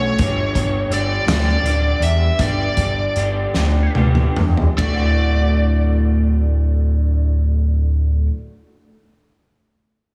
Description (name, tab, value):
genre	quiet-loud alternative rock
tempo	47-56 BPM (dotted quarters)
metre	6/8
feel	straight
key	D major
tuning	A4 = 440 Hz
part	nasal lead guitar with a parked wah	melody	0.0-8.3 s	C#5 to E5	-26 LUFS	equal	overdrive, slapback echo
part	electric guitar through a small old amp	arpeggios	0.0-8.3 s	D2 to G4	-27 LUFS	equal	analog chorus, slapback echo
part	overdriven picked electric bass	bass	0.0-8.3 s	D1 to E2	-19 LUFS	equal	none
part	loose indie drum kit	drums	0.2-5.0 s	hi-hat, kick drum, ride cymbal, snare drum, toms	-24 LUFS	equal	none
room	moderate lush hall reverb, RT60 2.0 s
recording	big arena sound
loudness	-18 LUFS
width	mono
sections	0.0-4.8 A section; 4.8-9.9 B section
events	slowing down 0.2-4.8; drum fill 3.5-4.8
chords	0.2 G5; 4.8 D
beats	| 0.19 1.27 | 2.39 3.55 | 4.78 6.05 | 7.32